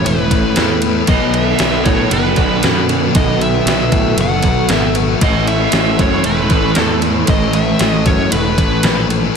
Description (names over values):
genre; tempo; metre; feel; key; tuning
rock, shoegaze and dream pop; 116 BPM; 4/4; straight; unclear; A4 = 439 Hz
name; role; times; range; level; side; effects
nasal lead guitar with a parked wah; melody; 0.0-9.1 s; B4 to F#5; -20 LUFS; equal; overdrive, diffuse ambient delay
soft additive organ-like pad; sustained chords; 0.0-9.3 s; A4 to C#6; -22 LUFS; right 3 dB; ensemble chorus, built-in reverb
biting overdriven guitar; riff; 0.0-9.4 s; A2 to A4; -20 LUFS; right 10 dB; reverse reverb
thick fuzz guitar; riff; 0.0-9.4 s; A2 to B3; -18 LUFS; left 9 dB; distortion, ensemble chorus
modern bright picked electric bass; bass; 0.1-9.3 s; E1 to A2; -19 LUFS; equal; none
gated 80s digital drum machine; drums; 0.1-9.2 s; kick drum, ride cymbal, snare drum; -18 LUFS; equal; gated reverb, gated reverb snare, overdrive
room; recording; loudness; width
moderate huge ambient reverb, RT60 8.6 s; dreamy mix soaked in reverb; -11 LUFS; side -6 dB against mid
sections
0.0-9.4 A section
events
none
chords
0.0 Aadd9; 1.1 B7sus4; 5.2 Aadd9